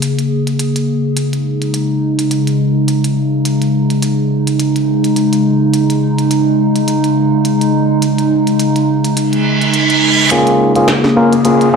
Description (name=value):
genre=glitch hop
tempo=105 BPM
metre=4/4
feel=swing 57% on 16ths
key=Bb minor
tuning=A4 = 439 Hz
part: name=warbly tape-like pad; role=sustained chords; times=0.0-11.8 s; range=Db3 to Ab4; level=-12 LUFS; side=equal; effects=chorus, built-in reverb
part: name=glitchy drum kit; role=drums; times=0.0-11.7 s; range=hi-hat, snare drum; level=-21 LUFS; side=equal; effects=none
part: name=reverse cymbal and riser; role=sound effects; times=9.4-11.8 s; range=none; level=-15 LUFS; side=right 3 dB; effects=none
part: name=overdriven tine electric piano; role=stabs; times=10.3-11.8 s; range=Bb3 to Bb4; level=-11 LUFS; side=equal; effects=vintage 12-bit sampler grit, low-pass filter, tape echo
room=moderate small room reverb, RT60 0.6 s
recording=played on a big sound system in a bare room, large studio reverb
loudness=-11 LUFS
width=side -5 dB against mid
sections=0.0-10.3 A section; 10.3-11.8 B section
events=reverse cymbal 9.4-10.3; build-up 10.3-11.8; riser 10.3-11.8; filter sweep on tine electric piano 10.3-11.8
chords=0.0 Bbm7 (rootless); 10.3 Bbm7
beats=0.03 0.60 | 1.17 1.74 2.31 2.88 | 3.45 4.03 4.60 5.17 | 5.74 6.31 6.88 7.45 | 8.03 8.60 9.17 9.74 | 10.31 10.88 11.45